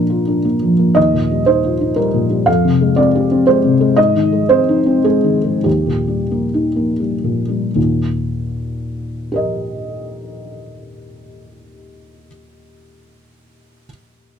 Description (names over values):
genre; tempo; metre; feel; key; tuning
neoclassical minimalist piano; 76-121 BPM; 3/4; rubato; Eb major; A4 = 443 Hz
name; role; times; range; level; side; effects
felt-muted upright piano; solo; 0.0-14.4 s; Eb2 to F5; -14 LUFS; equal; none
room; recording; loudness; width
light reverb; dark, warm production; -13 LUFS; side -8 dB against mid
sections
0.0-7.8 A section; 7.8-12.4 B section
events
slowing down 3.2-7.8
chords
0.0 Bb; 1.0 Ebadd9; 2.5 Fmadd9; 4.0 Ab; 5.7 Eb